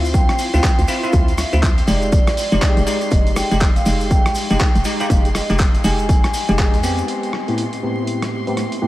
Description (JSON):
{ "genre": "deep house", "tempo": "121 BPM", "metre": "4/4", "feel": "swing 61% on 16ths", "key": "unclear", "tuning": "A4 = 440 Hz", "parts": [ { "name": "vibraphone with medium mallets", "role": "melody", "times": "0.0-7.0 s", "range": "D5 to Ab5", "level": "-25 LUFS", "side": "equal", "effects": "analog delay" }, { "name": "bell-like tine electric piano", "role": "stabs", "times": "0.0-8.9 s", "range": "A2 to G4", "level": "-22 LUFS", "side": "equal", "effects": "ensemble chorus, sidechain pumping, low-pass filter, diffuse ambient delay" }, { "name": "hollow knocking FM bass", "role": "bass", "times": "0.0-7.0 s", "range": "F1 to F2", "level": "-20 LUFS", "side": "equal", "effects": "sidechain pumping" }, { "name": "maracas", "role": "percussion", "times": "0.0-7.1 s", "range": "none", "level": "-32 LUFS", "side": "left 3 dB", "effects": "none" }, { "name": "rich chamber violin section", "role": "texture", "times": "0.0-8.9 s", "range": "C6", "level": "-33 LUFS", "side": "left 2 dB", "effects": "none" }, { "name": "dusty soul sampler-style drum kit", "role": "drums", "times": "0.1-8.8 s", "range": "handclaps, hi-hat, rim click", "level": "-25 LUFS", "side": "equal", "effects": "studio reverb" }, { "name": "electronic kick drum", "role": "drums", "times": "0.1-6.7 s", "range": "none", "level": "-16 LUFS", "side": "equal", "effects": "overdrive, studio reverb" } ], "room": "moderate cathedral reverb, RT60 6.5 s", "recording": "dreamy mix soaked in reverb, vinyl crackle", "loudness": "-15 LUFS", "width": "side -16 dB against mid", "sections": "0.0-7.1 A section; 7.1-8.9 B section", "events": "filter sweep on tine electric piano 7.1-8.9", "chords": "0.0 Dm9; 1.9 Fm9; 7.1 Am9" }